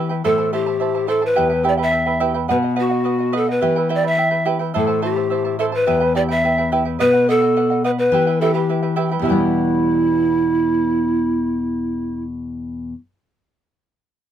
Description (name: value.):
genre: andean folk, Andean ensemble.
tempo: 107 BPM.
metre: 2/4.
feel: straight.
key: E harmonic minor.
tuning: A4 = 437 Hz.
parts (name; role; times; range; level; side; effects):
charango; accompaniment; 0.0-13.0 s; E4 to A5; -22 LUFS; right 6 dB; none.
nylon-string guitar; accompaniment; 0.0-13.0 s; E2 to B3; -22 LUFS; left 4 dB; none.
breathy reedy large pan pipes; melody; 0.2-12.2 s; E4 to E5; -18 LUFS; right 1 dB; none.
room: light reverb.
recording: minimal, uncompressed stereo recording.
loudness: -16 LUFS.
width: side -10 dB against mid.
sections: 0.2-9.2 A section; 9.2-11.5 B section.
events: none.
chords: 0.2 Am; 1.4 Em; 2.5 B; 3.6 Em; 4.7 Am; 5.9 Em; 7.0 B; 8.1 Em.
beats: | 0.24 0.81 | 1.37 1.93 | 2.50 3.06 | 3.62 4.18 | 4.75 5.31 | 5.87 6.43 | 6.99 7.55 | 8.12 8.68 | 9.24 9.80 | 10.36 10.93.